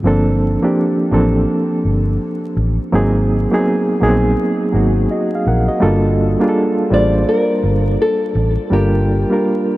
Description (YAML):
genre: lo-fi hip hop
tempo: 83 BPM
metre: 4/4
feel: swing 64% on 16ths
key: G minor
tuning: A4 = 440 Hz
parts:
  - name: reed electric piano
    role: accompaniment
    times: 0.0-9.8 s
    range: F3 to Gb5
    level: -15 LUFS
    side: right 1 dB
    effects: fast tremolo, low-pass filter
  - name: vintage muted fingered electric bass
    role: bass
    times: 0.0-9.2 s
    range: G1 to Bb1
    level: -16 LUFS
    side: equal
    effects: none
  - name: nylon-string guitar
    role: melody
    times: 6.9-9.8 s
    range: G4 to D5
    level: -18 LUFS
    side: left 1 dB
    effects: low-pass filter, diffuse ambient delay
room: moderate huge ambient reverb, RT60 6.9 s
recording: dreamy mix soaked in reverb, vinyl crackle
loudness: -13 LUFS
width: side -17 dB against mid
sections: 0.0-9.8 A section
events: reed electric piano fill 9.4-9.8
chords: 0.0 Gm11; 2.9 Ab9; 5.8 Gm9